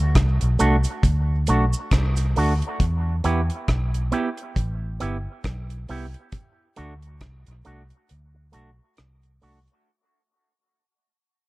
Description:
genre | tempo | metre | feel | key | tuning
dub reggae | 68 BPM | 4/4 | swing 58% on 16ths | unclear | A4 = 440 Hz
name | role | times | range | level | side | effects
vintage muted fingered electric bass | bass | 0.0-9.7 s | G1 to E2 | -22 LUFS | equal | none
deep reggae drum kit | drums | 0.2-9.8 s | hi-hat, kick drum, rim click | -23 LUFS | equal | none
electric guitar with an envelope filter | accompaniment | 0.6-9.6 s | A3 to G4 | -26 LUFS | right 2 dB | dub echo
cabasa | percussion | 0.6-2.3 s | none | -34 LUFS | right 6 dB | none
room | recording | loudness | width
light reverb, small room ambience | dark, warm production | -20 LUFS | side -20 dB against mid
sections
0.0-9.9 A section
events
fade-out 0.0-9.9; break 8.1-9.9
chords
0.0 D; 2.8 Em; 6.3 D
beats
0.15 1.03 1.91 | 2.80 3.68 4.56 5.44 | 6.33 7.21 8.09 8.97

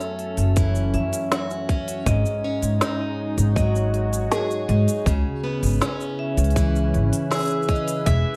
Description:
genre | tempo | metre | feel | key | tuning
folktronica | 80 BPM | 4/4 | straight | unclear | A4 = 440 Hz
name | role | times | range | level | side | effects
vibraphone with hard mallets | second line | 0.0-8.1 s | D#5 to E6 | -32 LUFS | equal | tape echo
warm analog pad | sustained chords | 0.0-8.4 s | C#3 to E5 | -32 LUFS | equal | subtle chorus
picked plugged-in twelve-string acoustic guitar | arpeggios | 0.0-8.4 s | F#2 to G#4 | -30 LUFS | equal | tape echo
organic electronic drum kit | drums | 0.0-8.2 s | hi-hat, shaker, snare drum | -30 LUFS | equal | overdrive
upright bass | bass | 0.4-8.2 s | E1 to G#2 | -23 LUFS | equal | none
electronic kick drum | drums | 0.6-8.2 s | none | -25 LUFS | equal | overdrive
mandolin | melody | 8.1-8.4 s | E5 | -30 LUFS | equal | vintage 12-bit sampler grit
room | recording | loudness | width
light reverb | dark, warm production | -22 LUFS | mono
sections
0.0-8.4 A section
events
none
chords
0.0 F#m7; 2.1 G#7sus4; 5.1 C#m7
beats
0.56 1.31 | 2.06 2.81 3.56 4.32 | 5.07 5.82 6.57 7.32 | 8.06

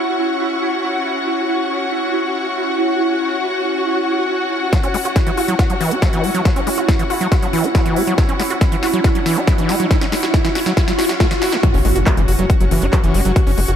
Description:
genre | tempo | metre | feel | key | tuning
psychedelic trance | 139 BPM | 4/4 | straight | unclear | A4 = 442 Hz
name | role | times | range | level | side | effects
pulsing gated texture | sustained chords | 0.0-13.8 s | E4 to F#4 | -22 LUFS | right 4 dB | chorus, built-in reverb, sidechain pumping
rich studio string section | texture | 0.0-13.8 s | C#4 to C#6 | -22 LUFS | left 3 dB | sidechain pumping
overdriven acid bass | riff | 4.7-13.7 s | E3 to F#4 | -21 LUFS | equal | distortion, auto-pan, sidechain pumping, digital delay
big-room dance drum kit | drums | 4.7-13.8 s | handclaps, hi-hat, snare drum | -25 LUFS | left 1 dB | overdrive, high-pass filter on snare, low-pass filter on snare, small room ambience, high-pass filter on hats, low-pass filter on hats
electronic kick drum | drums | 4.7-13.4 s | none | -16 LUFS | equal | overdrive, small room ambience
riser and impact | sound effects | 7.0-13.4 s | none | -24 LUFS | left 1 dB | none
tight sequencer bass | bass | 11.7-13.8 s | F#1 to G#1 | -17 LUFS | equal | none
room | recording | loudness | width
light reverb, digital ambience | none | -14 LUFS | side -9 dB against mid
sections
0.0-4.7 A section; 4.7-11.6 B section; 11.6-13.8 C section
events
build-up 4.7-11.6; drum fill 4.7-11.6; filter sweep on acid bass 4.7-11.6; riser 7.0-11.6; drop 11.6-13.8; impact 11.6-13.4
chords
0.0 F#5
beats
0.41 0.84 | 1.27 1.71 2.14 2.57 | 3.00 3.43 3.86 4.29 | 4.73 5.16 5.59 6.02 | 6.45 6.88 7.32 7.75 | 8.18 8.61 9.04 9.47 | 9.91 10.34 10.77 11.20 | 11.63 12.06 12.50 12.93 | 13.36

